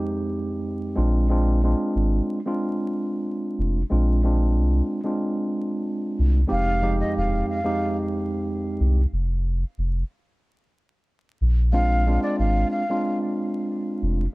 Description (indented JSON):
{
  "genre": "hip hop, boom-bap hip-hop",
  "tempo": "92 BPM",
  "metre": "4/4",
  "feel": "swing 54% on 16ths",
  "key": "F dorian",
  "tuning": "A4 = 440 Hz",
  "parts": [
    { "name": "mellow tine electric piano", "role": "accompaniment", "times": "0.0-14.2 s", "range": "F2 to G4", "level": "-25 LUFS", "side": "right 1 dB", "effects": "fast stereo tremolo, cassette tape, high-pass filter, low-pass filter" },
    { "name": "soft dub sub bass", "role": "bass", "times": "1.0-14.3 s", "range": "Eb1 to C2", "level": "-20 LUFS", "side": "equal", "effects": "none" },
    { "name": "concert flute", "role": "melody", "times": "6.5-13.2 s", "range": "D5 to F5", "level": "-27 LUFS", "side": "equal", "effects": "high-pass filter, low-pass filter, digital delay" }
  ],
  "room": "small room ambience",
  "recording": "dark, warm production, vinyl crackle",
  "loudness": "-21 LUFS",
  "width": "side -22 dB against mid",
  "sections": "0.0-6.5 A section; 6.5-14.3 B section",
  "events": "break 9.1-11.7",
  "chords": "0.0 Fm7; 1.0 Bb7; 6.5 Fm7; 11.4 Bb7",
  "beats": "0.65 | 1.30 1.95 2.60 3.25 | 3.91 4.56 5.21 5.86 | 6.51 7.17 7.82 8.47 | 9.12 9.78 10.43 11.08 | 11.73 12.38 13.04 13.69"
}